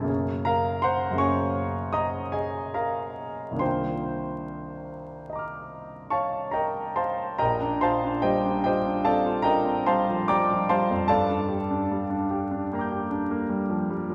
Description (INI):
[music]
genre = classical, impressionist solo piano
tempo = 46-55 BPM (dotted quarters)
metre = 9/8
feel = rubato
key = Bb major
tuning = A4 = 440 Hz
[part]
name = clear concert grand piano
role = solo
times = 0.0-14.1 s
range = Bb1 to A6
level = -26 LUFS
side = equal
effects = none
[sound]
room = wet concert hall reverb, RT60 1.9 s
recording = heard from further back in the room, vinyl crackle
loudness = -26 LUFS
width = mono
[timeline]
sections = 0.0-7.4 A section; 7.4-14.1 B section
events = none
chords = 0.1 Gbadd9; 3.6 Cm11; 7.4 Bb69; 11.1 Gmadd9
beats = | 0.09 1.19 2.32 | 3.60 4.86 6.12 | 7.40 8.65 9.86 | 11.08 12.30 13.50